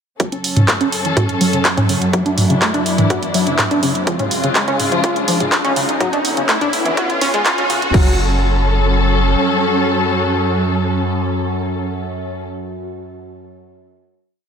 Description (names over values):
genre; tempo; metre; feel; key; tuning
melodic techno; 124 BPM; 4/4; straight; F# minor; A4 = 438 Hz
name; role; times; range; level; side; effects
muted studio string section; sustained chords; 0.2-12.5 s; C#3 to A4; -20 LUFS; left 1 dB; sidechain pumping
tight sequenced synth; arpeggios; 0.2-8.2 s; C#3 to F#4; -20 LUFS; equal; chorus, sidechain pumping, dub echo
round analog bass; bass; 0.2-9.4 s; F#1 to D2; -23 LUFS; equal; sidechain pumping, high-pass filter
overtone-sweeping drone; drone; 1.0-12.5 s; F#2 to F#3; -24 LUFS; equal; chorus, built-in reverb, phaser, sidechain pumping
electronic kick drum; drums; 0.2-8.0 s; none; -19 LUFS; equal; overdrive, high-pass filter on kick, high-pass filter on room
house drum kit; drums; 0.2-8.0 s; crash cymbal, handclaps, hi-hat, toms; -19 LUFS; right 1 dB; overdrive
riser; sound effects; 2.3-7.9 s; none; -24 LUFS; left 1 dB; none
room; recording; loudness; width
light reverb; high-pass filter; -14 LUFS; side -7 dB against mid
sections
0.2-7.9 build; 7.9-11.8 final chord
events
build-up 0.2-7.9; filter sweep on synth arpeggio sound 0.2-7.9; riser 2.3-7.9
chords
0.2 F#m; 2.1 Dadd9; 4.1 C#; 6.0 Bmadd9; 7.9 F#m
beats
| 0.20 0.68 1.17 1.65 | 2.13 2.62 3.10 3.59 | 4.07 4.55 5.04 5.52 | 6.00 6.49 6.97 7.46 | 7.94 8.43 8.91 9.39 | 9.88 10.36 10.84 11.33